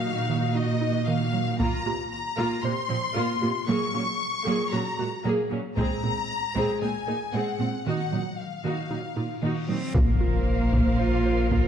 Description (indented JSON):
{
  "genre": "cinematic, hybrid orchestral and electronic film score",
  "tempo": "115 BPM",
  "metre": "4/4",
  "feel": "straight",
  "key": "Bb minor",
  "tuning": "A4 = 441 Hz",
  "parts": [
    { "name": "rich symphonic violin section", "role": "melody", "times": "0.0-9.7 s", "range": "Eb5 to Db6", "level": "-30 LUFS", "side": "left 5 dB", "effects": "none" },
    { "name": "rich symphonic viola section", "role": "accompaniment", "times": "0.0-11.7 s", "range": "C3 to Bb4", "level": "-31 LUFS", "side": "equal", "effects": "none" },
    { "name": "rich symphonic cello section", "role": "bass", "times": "0.0-11.7 s", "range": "Bb2", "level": "-29 LUFS", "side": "right 3 dB", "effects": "none" },
    { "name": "mallet-like synth pluck", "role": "arpeggios", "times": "0.3-11.7 s", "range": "Eb3 to C5", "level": "-32 LUFS", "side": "right 4 dB", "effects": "chorus, tape echo" },
    { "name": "taiko ensemble", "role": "drums", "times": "1.6-2.6, 5.8-6.8, 9.9-11.7 s", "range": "none", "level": "-27 LUFS", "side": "left 1 dB", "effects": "none" },
    { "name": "reverse cymbal and impact", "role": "sound effects", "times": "9.7-11.7 s", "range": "none", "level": "-31 LUFS", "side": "left 1 dB", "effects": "none" },
    { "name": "clear cello", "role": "melody", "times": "9.7-11.7 s", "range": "Bb3 to F4", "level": "-29 LUFS", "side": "equal", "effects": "none" },
    { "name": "dark symphonic violin section", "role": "second line", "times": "9.9-11.7 s", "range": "C5 to F5", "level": "-34 LUFS", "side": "left 2 dB", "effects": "none" },
    { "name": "saturated sub bass", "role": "bass", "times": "9.9-11.7 s", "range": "Bb1", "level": "-26 LUFS", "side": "left 1 dB", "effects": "none" }
  ],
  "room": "moderate scoring stage reverb, RT60 1.7 s",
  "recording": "dark, warm production",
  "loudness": "-24 LUFS",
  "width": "side -8 dB against mid",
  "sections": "0.0-9.9 A section; 9.9-11.7 A section",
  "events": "reverse cymbal 9.7; impact 9.9-11.7",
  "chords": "0.0 Ebmadd9/Bb; 1.6 Bbsus2; 3.7 Gbadd9/Bb; 5.8 Abadd9/Bb; 7.9 Ebmadd9/Bb; 9.9 Bbsus2"
}